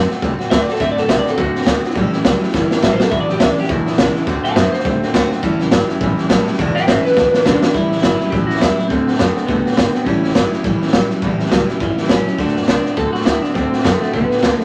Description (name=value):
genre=rockabilly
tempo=207 BPM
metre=4/4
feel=swing 60% on 8ths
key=unclear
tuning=A4 = 439 Hz
part: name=picked steel-string acoustic guitar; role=accompaniment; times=0.0-14.6 s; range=E2 to F#4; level=-24 LUFS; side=equal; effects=none
part: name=upright bass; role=bass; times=0.0-14.6 s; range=E1 to F#2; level=-26 LUFS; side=equal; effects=none
part: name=raw garage drum kit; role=drums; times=0.1-14.6 s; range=hi-hat, kick drum, snare drum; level=-20 LUFS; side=equal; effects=none
part: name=electric guitar through a small old amp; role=melody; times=0.5-14.6 s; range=A3 to A5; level=-21 LUFS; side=equal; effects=none
part: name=electric guitar through a small old amp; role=riff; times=0.8-14.6 s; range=E2 to B3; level=-24 LUFS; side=equal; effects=phaser
room=moderate studio ambience, RT60 0.5 s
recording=vinyl crackle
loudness=-16 LUFS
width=mono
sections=0.0-7.7 A section; 7.7-14.6 B section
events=clean electric guitar solo 0.0-7.7; drum fill 2.5-3.1, 7.2-7.7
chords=0.0 D7; 2.0 A7; 3.1 E7; 4.3 D7; 5.4 A7; 6.6 E7; 7.7 A7; 8.9 D7; 10.1 A7; 12.4 D7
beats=0.23 0.51 | 0.80 1.09 1.38 1.67 | 1.96 2.25 2.54 2.83 | 3.12 3.41 3.70 3.98 | 4.27 4.56 4.85 5.14 | 5.43 5.72 6.01 6.30 | 6.58 6.87 7.16 7.45 | 7.74 8.03 8.32 8.61 | 8.90 9.19 9.48 9.77 | 10.06 10.35 10.64 10.94 | 11.23 11.52 11.81 12.10 | 12.39 12.68 12.97 13.26 | 13.55 13.85 14.14 14.43